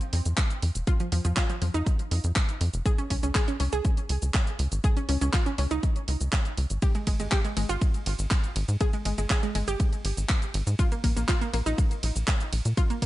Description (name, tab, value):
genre	progressive house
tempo	121 BPM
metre	4/4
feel	straight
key	unclear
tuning	A4 = 440 Hz
part	analog pluck	arpeggios	0.0-13.1 s	F3 to Ab4	-32 LUFS	right 1 dB	chorus, vintage 12-bit sampler grit, sidechain pumping, dub echo
part	house drum kit	drums	0.0-13.1 s	cabasa, handclaps, hi-hat, ride cymbal	-32 LUFS	right 1 dB	none
part	tight sequencer bass	bass	0.1-13.1 s	F1 to Bb2	-26 LUFS	equal	tube saturation, sidechain pumping
part	electronic kick drum	drums	0.4-13.1 s	none	-25 LUFS	equal	none
room	little or no reverb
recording	nothing above 10.9 kHz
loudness	-24 LUFS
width	side -16 dB against mid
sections	0.0-13.1 A section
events	none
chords	0.0 F5; 2.9 Dbsus2; 6.8 Fmadd9/Ab; 10.8 N.C.